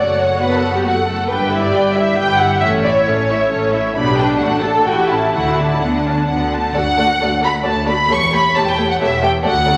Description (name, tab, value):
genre	quick classical-period movement for string orchestra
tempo	135 BPM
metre	3/4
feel	rubato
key	D major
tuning	A4 = 441 Hz
part	rich chamber violin section	melody	0.0-9.8 s	C#5 to C#6	-21 LUFS	equal	none
part	warm studio violin section	second line	0.0-9.7 s	D4 to G5	-21 LUFS	equal	none
part	rich chamber viola section	accompaniment	0.0-9.7 s	A3 to C#5	-23 LUFS	equal	none
part	clear chamber double bass section	bass	0.0-9.8 s	E1 to D2	-27 LUFS	equal	none
part	rich chamber cello section	bass	0.0-9.8 s	D2 to D3	-26 LUFS	equal	none
room	wet scoring stage reverb, RT60 1.6 s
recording	vinyl crackle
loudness	-16 LUFS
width	mono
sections	0.0-6.7 A section; 6.7-9.8 A section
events	none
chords	0.0 F#madd11; 1.3 Em/G; 2.6 A; 3.9 G/B; 4.4 D/A; 4.9 A7; 5.3 D; 8.1 A7/E